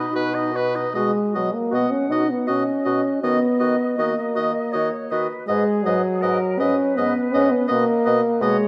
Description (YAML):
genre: classical, slow romantic movement for wind quintet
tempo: 80 BPM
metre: 3/4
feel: uneven beats, rubato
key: B major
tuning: A4 = 440 Hz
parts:
  - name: silver concert flute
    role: melody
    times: 0.0-8.7 s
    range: G#4 to B5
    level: -34 LUFS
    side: equal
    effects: none
  - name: clear oboe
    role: second line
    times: 0.0-8.6 s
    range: B4 to D#5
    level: -29 LUFS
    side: equal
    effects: none
  - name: clear clarinet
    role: accompaniment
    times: 0.0-8.6 s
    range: D#4 to B4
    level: -32 LUFS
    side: equal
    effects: none
  - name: warm French horn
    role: accompaniment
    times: 0.0-8.7 s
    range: F#3 to B4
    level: -23 LUFS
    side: equal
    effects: none
  - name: warm bassoon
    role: bass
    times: 0.0-8.6 s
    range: G#2 to D#3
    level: -30 LUFS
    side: equal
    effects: none
room: wet recital hall reverb, RT60 1.8 s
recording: none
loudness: -21 LUFS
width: mono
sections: 0.9-8.7 A section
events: none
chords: 0.0 B; 3.2 B/D#; 5.5 G#m7; 7.7 G#m/B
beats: 0.14 | 0.94 1.72 2.47 | 3.22 3.97 4.72 | 5.46 6.21 6.95 | 7.68 8.40